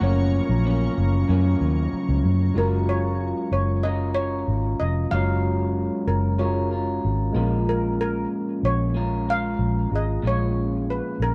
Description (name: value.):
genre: indie pop.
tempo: 94 BPM.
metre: 4/4.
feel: straight.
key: F# major.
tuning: A4 = 440 Hz.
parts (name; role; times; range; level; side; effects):
steel pan; melody; 0.0-11.3 s; A#4 to F#5; -31 LUFS; equal; lush chorus.
electric guitar through a small old amp; accompaniment; 0.0-11.3 s; F#2 to A#4; -30 LUFS; equal; subtle chorus, warbly pitch drift.
tine electric piano; accompaniment; 0.0-11.3 s; F#3 to C#5; -32 LUFS; equal; cassette tape.
shimmering ambient pad; sustained chords; 0.0-2.5 s; A#4 to C#6; -40 LUFS; equal; chorus, built-in reverb.
vintage muted fingered electric bass; bass; 0.0-11.3 s; E#1 to F#2; -25 LUFS; equal; none.
room: light reverb.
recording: cassette tape.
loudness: -23 LUFS.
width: mono.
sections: 0.0-2.6 A section; 2.6-11.3 B section.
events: none.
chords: 0.0 F#maj7; 2.6 F#maj9; 7.4 A#m7.